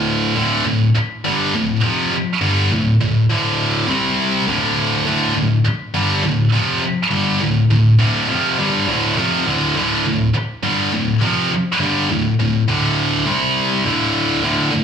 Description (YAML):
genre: rock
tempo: 102 BPM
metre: 4/4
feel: straight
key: D minor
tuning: A4 = 440 Hz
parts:
  - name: heavy high-gain guitar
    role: solo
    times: 0.0-14.8 s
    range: D2 to C4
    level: -15 LUFS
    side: equal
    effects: distortion, slapback echo
room: light reverb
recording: live gig heard through the venue's PA, club reverb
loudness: -15 LUFS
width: side -7 dB against mid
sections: 0.4-9.8 A section; 9.8-14.8 A section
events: none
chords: 0.4 Dm; 3.9 C5; 4.5 Dm; 13.3 C5; 13.9 D5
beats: | 0.37 0.96 1.54 2.13 | 2.72 3.30 3.89 4.48 | 5.06 5.65 6.24 6.83 | 7.41 8.00 8.59 9.17 | 9.76 10.34 10.93 11.52 | 12.10 12.69 13.27 13.86 | 14.44